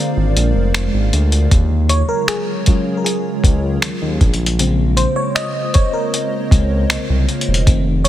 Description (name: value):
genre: contemporary R&B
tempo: 78 BPM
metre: 4/4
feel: straight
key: Bb minor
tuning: A4 = 439 Hz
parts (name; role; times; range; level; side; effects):
- FM electric piano with soft pad layer; accompaniment; 0.0-8.1 s; Db3 to F5; -20 LUFS; equal; chorus
- glassy FM pad; sustained chords; 0.0-8.1 s; C3 to F4; -24 LUFS; equal; ensemble chorus, built-in reverb, tremolo
- smooth synth bass; bass; 0.2-8.1 s; E1 to Eb2; -16 LUFS; equal; none
- dusty soul sampler-style drum kit; drums; 0.4-8.1 s; finger snaps, hi-hat, kick drum; -16 LUFS; equal; soft clipping on snare
room: little or no reverb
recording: dense, heavily limited modern master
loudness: -14 LUFS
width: side -13 dB against mid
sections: 0.0-8.1 A section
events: break 0.0-1.5; FM electric piano solo 0.0-8.1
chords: 0.0 Bb7; 1.5 Ebm11; 4.2 Bbm7